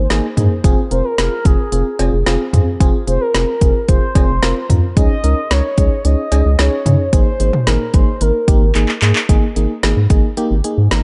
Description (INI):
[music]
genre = synth-pop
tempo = 111 BPM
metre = 4/4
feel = straight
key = unclear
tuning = A4 = 440 Hz
[part]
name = mellow horn-like synth lead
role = melody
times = 0.0-8.8 s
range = Ab4 to Eb5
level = -24 LUFS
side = equal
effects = chorus, phaser, tape echo
[part]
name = round analog bass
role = bass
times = 0.0-11.0 s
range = F1 to Db3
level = -18 LUFS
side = equal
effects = none
[part]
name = mellow FM electric piano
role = accompaniment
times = 0.1-11.0 s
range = Bb3 to Bb4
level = -23 LUFS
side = equal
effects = chorus
[part]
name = deep house drum kit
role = drums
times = 0.1-11.0 s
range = cowbell, handclaps, hi-hat, kick drum, snare drum, toms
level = -17 LUFS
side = equal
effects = none
[sound]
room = light reverb, digital ambience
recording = dark, warm production, nothing above 11.0 kHz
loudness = -15 LUFS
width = mono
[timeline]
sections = 0.0-9.3 A section; 9.3-11.0 B section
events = drum fill 8.8-9.3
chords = 0.0 Absus2; 0.6 Fm; 5.0 Dbsus2; 7.1 Absus2